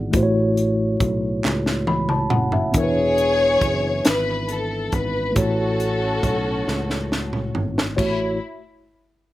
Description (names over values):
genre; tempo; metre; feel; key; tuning
slow gospel; 46 BPM (dotted quarters); 6/8; straight; A major; A4 = 440 Hz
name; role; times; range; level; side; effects
mellow tine electric piano; accompaniment; 0.0-8.4 s; A1 to B5; -23 LUFS; equal; medium stereo tremolo
fingered electric bass; bass; 0.0-8.4 s; E1 to C#2; -26 LUFS; equal; none
crisp fusion drum kit; drums; 0.1-8.2 s; crash cymbal, hi-hat, kick drum, snare drum, toms; -23 LUFS; equal; none
group handclap; percussion; 1.4-1.8 s; none; -28 LUFS; right 5 dB; none
warm studio string section; melody; 2.8-8.4 s; C#4 to C#5; -22 LUFS; left 2 dB; none
room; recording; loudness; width
little or no reverb; faint mains hum; -19 LUFS; side -15 dB against mid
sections
0.0-2.7 A section; 2.7-8.0 B section; 8.0-9.3 C section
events
drum fill 1.4-2.7, 6.7-8.0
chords
0.1 A6; 2.7 E7; 5.4 A6